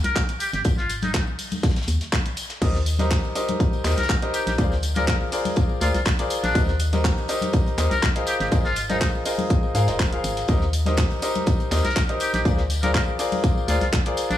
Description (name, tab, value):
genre	piano house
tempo	122 BPM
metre	4/4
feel	swing 53% on 16ths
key	Eb major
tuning	A4 = 441 Hz
part	trumpet with metal mute	melody	0.0-14.4 s	D4 to Bb4	-28 LUFS	left 1 dB	digital delay
part	organ-like FM bass	bass	0.0-14.4 s	Eb1 to Ab2	-24 LUFS	equal	tube saturation, sidechain pumping
part	house drum kit	drums	0.0-14.4 s	crash cymbal, handclaps, hi-hat	-30 LUFS	equal	none
part	tight metal drum kit	drums	0.0-14.4 s	hi-hat, snare drum	-39 LUFS	left 3 dB	none
part	tambourine and congas	percussion	0.0-14.4 s	none	-32 LUFS	left 3 dB	none
part	electronic kick drum	drums	0.2-14.0 s	none	-22 LUFS	equal	none
part	bright baby grand piano	riff	2.6-14.4 s	Eb4 to F5	-26 LUFS	left 1 dB	sidechain pumping, digital delay
room	little or no reverb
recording	small room reverb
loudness	-20 LUFS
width	side -12 dB against mid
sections	0.0-14.4 A section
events	none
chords	0.4 Ab5; 2.6 Eb6; 4.6 Bb9/D; 6.6 Eb6; 8.3 Ab69; 10.5 Eb6; 12.5 Bb9/D